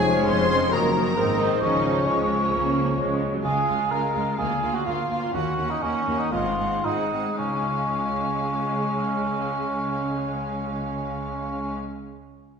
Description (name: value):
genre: classical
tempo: 110-138 BPM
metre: 4/4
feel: straight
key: Db major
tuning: A4 = 440 Hz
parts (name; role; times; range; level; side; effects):
- warm symphonic violin section; melody; 0.0-11.7 s; Db5 to C6; -33 LUFS; left 3 dB; none
- clear clarinet; second line; 0.0-3.2 s; Gb4 to Ab4; -32 LUFS; left 2 dB; none
- dark cor anglais; second line; 0.0-11.7 s; Db4 to Db5; -27 LUFS; right 1 dB; none
- rich symphonic violin section; second line; 0.0-11.8 s; C4 to C5; -34 LUFS; left 2 dB; none
- silver concert flute; second line; 0.0-3.2 s; Db6 to Ab6; -29 LUFS; left 1 dB; none
- warm bassoon; accompaniment; 0.0-3.2 s; Eb3 to F3; -28 LUFS; equal; none
- dark French horn section; sustained chords; 0.0-3.2 s; Db3 to C4; -31 LUFS; left 2 dB; none
- concert harp; arpeggios; 0.0-12.0 s; F2 to F5; -34 LUFS; left 5 dB; none
- clear studio cello section; bass; 0.0-11.8 s; Db2 to Db3; -33 LUFS; right 2 dB; none
- warm symphonic double bass section; bass; 0.0-11.7 s; F1 to Eb2; -33 LUFS; right 2 dB; none
- rich symphonic viola section; accompaniment; 0.1-11.7 s; Eb3 to Db4; -30 LUFS; right 2 dB; none
room: wet scoring stage reverb, RT60 1.7 s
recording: heard from further back in the room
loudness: -22 LUFS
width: side -6 dB against mid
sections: 0.0-3.4 A section; 3.4-7.4 B section; 7.4-11.4 C section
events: slowing down 2.5-7.4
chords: 0.0 Db/F; 0.7 Ebm/Gb; 1.2 Ab; 1.6 Db; 4.4 Bb7/D; 5.3 Ebm7; 6.3 Ab7; 7.4 Db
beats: 0.28 0.72 1.17 | 1.62 2.07 2.53 2.98 | 3.44 3.91 4.38 4.85 | 5.33 5.82 6.33 6.85 | 7.39 7.89 8.40 8.91 | 9.41 9.92 10.43 10.93